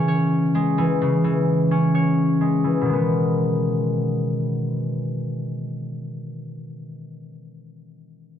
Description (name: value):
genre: hip hop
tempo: 129 BPM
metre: 4/4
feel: half-time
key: G# minor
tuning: A4 = 439 Hz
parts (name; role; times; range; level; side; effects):
- concert harp; accompaniment; 0.0-6.8 s; B2 to C#5; -20 LUFS; left 1 dB; low-pass filter
room: light reverb, studio ambience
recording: dense, heavily limited modern master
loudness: -19 LUFS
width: side -9 dB against mid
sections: 0.0-2.9 A section; 2.9-6.6 B section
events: filter sweep on harp 0.0-2.9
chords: 0.0 C#m; 2.9 G#m